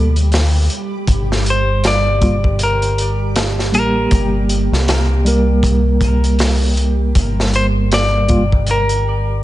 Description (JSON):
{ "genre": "trip hop", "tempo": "79 BPM", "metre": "4/4", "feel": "swing 59% on 16ths", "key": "G minor", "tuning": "A4 = 444 Hz", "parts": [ { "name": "mellow tine electric piano", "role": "accompaniment", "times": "0.0-8.4 s", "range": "G3 to Bb4", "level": "-20 LUFS", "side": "right 2 dB", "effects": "tremolo, tape echo" }, { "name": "deep dub fingered electric bass", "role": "bass", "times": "0.0-9.4 s", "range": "G1 to D2", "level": "-16 LUFS", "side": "equal", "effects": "tube saturation" }, { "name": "backwards swelling texture", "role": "texture", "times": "0.0-9.4 s", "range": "G3 to G4", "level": "-26 LUFS", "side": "right 2 dB", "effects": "built-in reverb" }, { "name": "crunchy breakbeat drum kit", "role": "drums", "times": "0.2-9.0 s", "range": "hi-hat, kick drum, snare drum", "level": "-19 LUFS", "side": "equal", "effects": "none" }, { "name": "semi-hollow electric guitar", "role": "melody", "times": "1.5-9.4 s", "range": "Bb4 to D5", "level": "-20 LUFS", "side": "left 1 dB", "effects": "dub echo" } ], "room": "small room reverb", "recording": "nothing above 10.8 kHz", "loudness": "-13 LUFS", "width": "side -15 dB against mid", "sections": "0.0-9.4 A section", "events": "none", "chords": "0.0 Gm", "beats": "0.32 | 1.08 1.84 2.60 3.36 | 4.12 4.88 5.64 6.40 | 7.16 7.92 8.67 9.43" }